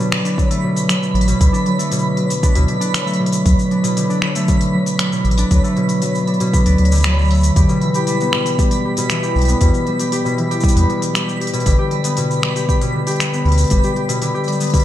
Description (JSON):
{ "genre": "folktronica", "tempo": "117 BPM", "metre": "4/4", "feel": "straight", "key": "D major", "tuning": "A4 = 440 Hz", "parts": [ { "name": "concert harp", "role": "arpeggios", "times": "0.0-14.8 s", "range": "B2 to G4", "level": "-17 LUFS", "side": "equal", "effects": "ping-pong delay" }, { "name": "organic electronic drum kit", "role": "drums", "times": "0.0-14.8 s", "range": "finger snaps, hi-hat, shaker", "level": "-24 LUFS", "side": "left 1 dB", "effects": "none" }, { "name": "twinkling granular texture", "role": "texture", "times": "0.0-14.8 s", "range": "B5", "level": "-26 LUFS", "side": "right 5 dB", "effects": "built-in reverb" }, { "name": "electronic kick drum", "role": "drums", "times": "0.4-14.8 s", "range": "none", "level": "-16 LUFS", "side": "equal", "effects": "none" }, { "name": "warm sub bass", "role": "bass", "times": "1.1-13.8 s", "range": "G1 to E2", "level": "-14 LUFS", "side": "equal", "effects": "none" } ], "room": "light reverb, digital ambience", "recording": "none", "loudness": "-14 LUFS", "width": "side -12 dB against mid", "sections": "0.0-14.8 A section", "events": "none", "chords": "0.0 D6; 7.6 Em; 11.7 G" }